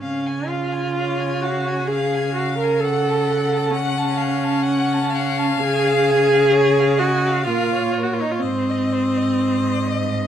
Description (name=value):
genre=classical, slow romantic movement for string quartet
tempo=64 BPM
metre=3/4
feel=uneven beats, rubato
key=Db major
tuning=A4 = 440 Hz
part: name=clear violin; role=second line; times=0.0-10.3 s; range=Bb4 to A5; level=-29 LUFS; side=left 1 dB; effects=none
part: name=rich viola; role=accompaniment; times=0.0-10.3 s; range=C4 to Bb4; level=-19 LUFS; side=right 1 dB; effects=none
part: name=clear cello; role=bass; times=0.0-10.3 s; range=Ab2 to Db3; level=-24 LUFS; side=right 3 dB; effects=none
part: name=clear violin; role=melody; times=1.0-10.3 s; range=Db5 to Gb5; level=-27 LUFS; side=left 8 dB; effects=none
room=moderate large studio reverb, RT60 1.3 s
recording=dark, warm production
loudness=-17 LUFS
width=side -9 dB against mid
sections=0.0-10.3 A section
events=none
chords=0.0 Db; 2.8 Gbm/Db; 5.6 Db; 7.5 Bbm; 8.4 Ab